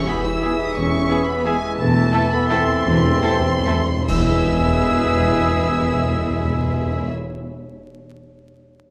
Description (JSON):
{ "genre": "classical, orchestral ballroom waltz", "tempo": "135-188 BPM", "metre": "3/4", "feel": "rubato", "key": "E major", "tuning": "A4 = 440 Hz", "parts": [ { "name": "warm symphonic violin section", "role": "melody", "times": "0.0-7.1 s", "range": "G#5 to E6", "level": "-31 LUFS", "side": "equal", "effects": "none" }, { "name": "silver concert flute", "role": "second line", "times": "0.0-7.1 s", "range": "E6 to B6", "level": "-32 LUFS", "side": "equal", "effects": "none" }, { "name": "warm clarinet", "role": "second line", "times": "0.0-7.1 s", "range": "G#4 to B4", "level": "-32 LUFS", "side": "equal", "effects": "none" }, { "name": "warm oboe", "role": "second line", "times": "0.0-7.1 s", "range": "E5", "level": "-33 LUFS", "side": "equal", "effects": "none" }, { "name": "warm bassoon", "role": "accompaniment", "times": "0.0-7.1 s", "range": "E3 to G#3", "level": "-32 LUFS", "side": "equal", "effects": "none" }, { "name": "mellow French horn section", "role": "sustained chords", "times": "0.0-7.1 s", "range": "G#3 to E4", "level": "-28 LUFS", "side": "equal", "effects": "none" }, { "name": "concert harp", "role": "arpeggios", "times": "0.0-8.0 s", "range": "E3 to A5", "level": "-30 LUFS", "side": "equal", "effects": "none" }, { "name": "timpani", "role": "percussion", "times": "0.0-7.1 s", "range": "E2", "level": "-28 LUFS", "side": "equal", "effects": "none" }, { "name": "rich symphonic violin section", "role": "second line", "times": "0.1-7.1 s", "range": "G#4 to E5", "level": "-35 LUFS", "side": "equal", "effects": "none" }, { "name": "rich symphonic viola section", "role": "accompaniment", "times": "0.1-7.1 s", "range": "A3 to E4", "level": "-31 LUFS", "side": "equal", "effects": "none" }, { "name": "warm trombone section", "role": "sustained chords", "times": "0.1-7.1 s", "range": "E3 to C4", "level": "-34 LUFS", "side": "equal", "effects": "none" }, { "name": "clear trumpet", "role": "stabs", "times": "0.1-7.1 s", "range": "G#4 to A4", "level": "-30 LUFS", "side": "equal", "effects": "none" }, { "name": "mellow tuba", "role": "bass", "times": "0.8-7.1 s", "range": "E1", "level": "-31 LUFS", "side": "equal", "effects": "none" }, { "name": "rich symphonic cello section", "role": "bass", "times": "0.8-7.1 s", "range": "E2", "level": "-29 LUFS", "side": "equal", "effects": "none" }, { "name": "rich symphonic double bass section", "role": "bass", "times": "0.8-7.1 s", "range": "E1", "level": "-30 LUFS", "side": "equal", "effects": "none" }, { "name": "clash cymbals and concert bass drum", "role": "percussion", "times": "4.1-4.9 s", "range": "none", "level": "-33 LUFS", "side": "equal", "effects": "none" } ], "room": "wet recital hall reverb, RT60 1.7 s", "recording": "vinyl crackle", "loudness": "-19 LUFS", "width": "mono", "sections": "0.0-4.1 A section; 4.1-6.6 B section", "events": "slowing down 1.3-4.1; timpani fill 1.8-4.1; band accent 4.1-4.5", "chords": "0.0 E; 1.8 Am/E; 4.1 E" }